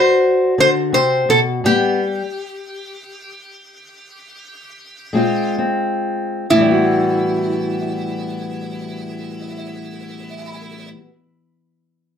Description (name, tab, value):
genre	acoustic country blues, solo or duo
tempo	41-58 BPM (dotted quarters)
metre	12/8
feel	straight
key	unclear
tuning	A4 = 440 Hz
part	lap resonator guitar	melody	0.0-10.9 s	E4 to C5	-19 LUFS	left 1 dB	none
part	fingerpicked steel-string acoustic guitar	accompaniment	0.0-11.1 s	A2 to F#4	-19 LUFS	left 1 dB	none
room	moderate studio reverb, RT60 0.6 s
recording	heard from further back in the room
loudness	-15 LUFS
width	side -8 dB against mid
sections	0.0-6.5 A section; 6.5-12.2 B section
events	slowing down 0.2-6.5; stop 1.6-5.1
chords	0.0 D7; 1.6 Asus2; 5.1 Bbsus2; 6.5 Asus2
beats	0.57 | 1.62 2.72 3.88 5.13 | 6.50 7.96 9.41 10.86